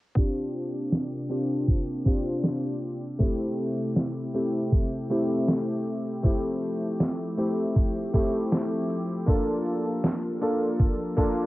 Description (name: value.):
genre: vaporwave.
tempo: 79 BPM.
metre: 4/4.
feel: straight.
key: unclear.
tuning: A4 = 440 Hz.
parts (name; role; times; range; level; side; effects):
clear electric grand piano; accompaniment; 0.1-11.5 s; A3 to A4; -27 LUFS; equal; analog chorus, cassette tape, analog delay.
lush unison pad; sustained chords; 0.2-11.5 s; C3 to A4; -35 LUFS; equal; chorus, cassette tape.
detuned 8-bit digital drum machine; drums; 0.2-11.5 s; hi-hat, snare drum; -26 LUFS; equal; vintage 12-bit sampler grit, cassette tape.
electronic kick drum; drums; 0.2-11.3 s; none; -23 LUFS; equal; vintage 12-bit sampler grit, cassette tape.
room: little or no reverb.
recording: home recording on cassette, low-pass filter.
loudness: -24 LUFS.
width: side -18 dB against mid.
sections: 0.2-11.5 A section.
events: filter sweep 0.2-11.5.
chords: 0.2 Bb69; 3.2 Am7; 6.2 Fmaj9; 9.3 Gm9.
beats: | 0.17 0.93 1.69 2.45 | 3.21 3.96 4.72 5.48 | 6.24 7.00 7.76 8.52 | 9.28 10.04 10.80.